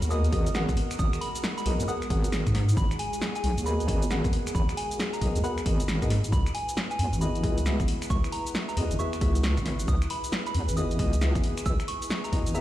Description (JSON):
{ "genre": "UK garage, two-step garage", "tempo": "135 BPM", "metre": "4/4", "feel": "swing 63% on 16ths", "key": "C# dorian", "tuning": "A4 = 437 Hz", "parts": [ { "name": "soft string machine", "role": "sustained chords", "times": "0.0-12.6 s", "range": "G#3 to B4", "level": "-38 LUFS", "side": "equal", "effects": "ensemble chorus, sidechain pumping" }, { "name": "deep soft wobble bass", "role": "bass", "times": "0.0-12.6 s", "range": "G#1 to G#2", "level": "-26 LUFS", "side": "equal", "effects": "chorus" }, { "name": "punchy analog drum machine", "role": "drums", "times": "0.0-12.6 s", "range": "finger snaps, hi-hat, shaker, snare drum", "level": "-34 LUFS", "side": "equal", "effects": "none" }, { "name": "soft synth bell", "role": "melody", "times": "0.1-12.6 s", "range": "G#5 to E6", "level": "-36 LUFS", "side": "right 2 dB", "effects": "chorus, phaser, ping-pong delay" }, { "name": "dark grand piano", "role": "stabs", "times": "0.1-12.6 s", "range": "A#3 to F#5", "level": "-34 LUFS", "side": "left 2 dB", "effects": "ping-pong delay" }, { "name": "electronic kick drum", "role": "drums", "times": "0.3-12.4 s", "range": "none", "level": "-28 LUFS", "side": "equal", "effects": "none" } ], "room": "light reverb", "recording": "played on a big sound system in a bare room, large studio reverb", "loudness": "-24 LUFS", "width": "side -14 dB against mid", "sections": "0.0-12.6 A section", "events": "none", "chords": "0.0 G#m7; 6.3 C#m11", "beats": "0.10 0.55 | 0.99 1.44 1.88 2.33 | 2.77 3.21 3.66 4.10 | 4.55 4.99 5.44 5.88 | 6.33 6.77 7.21 7.66 | 8.10 8.55 8.99 9.44 | 9.88 10.33 10.77 11.21 | 11.66 12.10 12.55" }